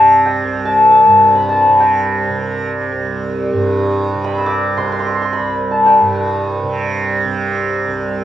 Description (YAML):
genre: indian classical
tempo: free time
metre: none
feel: none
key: C raga yaman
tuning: A4 = 441 Hz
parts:
  - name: santur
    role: melody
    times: 0.0-7.9 s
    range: G5 to E6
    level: -11 LUFS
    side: left 2 dB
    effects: cassette tape
  - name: tanpura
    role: drone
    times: 0.0-8.2 s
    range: C2 to C3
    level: -17 LUFS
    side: right 3 dB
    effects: cassette tape
room: wet studio reverb, RT60 0.5 s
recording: home recording on cassette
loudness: -12 LUFS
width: side -11 dB against mid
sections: 0.0-8.2 A section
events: none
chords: none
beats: free time